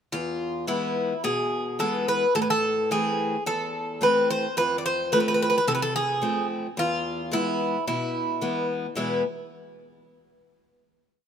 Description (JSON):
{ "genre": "greek folk, Greek bouzouki band", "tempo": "109 BPM", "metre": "4/4", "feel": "straight", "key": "unclear", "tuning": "A4 = 437 Hz", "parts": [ { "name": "Greek bouzouki", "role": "melody", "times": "0.1-9.2 s", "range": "E4 to D5", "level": "-24 LUFS", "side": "equal", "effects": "none" }, { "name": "picked steel-string acoustic guitar", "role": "accompaniment", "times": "0.1-9.2 s", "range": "E2 to C4", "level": "-28 LUFS", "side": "left 1 dB", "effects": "none" } ], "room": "moderate plate reverb, RT60 2.7 s", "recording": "minimal, uncompressed stereo recording", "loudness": "-23 LUFS", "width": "side -8 dB against mid", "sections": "0.1-9.0 A section; 9.0-11.1 final chord", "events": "none", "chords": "0.1 E; 2.4 Am; 4.6 F; 6.8 E", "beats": "| 0.13 0.69 1.24 1.80 | 2.35 2.91 3.46 4.01 | 4.57 5.12 5.67 6.22 | 6.77 7.32 7.87 8.41 | 8.96" }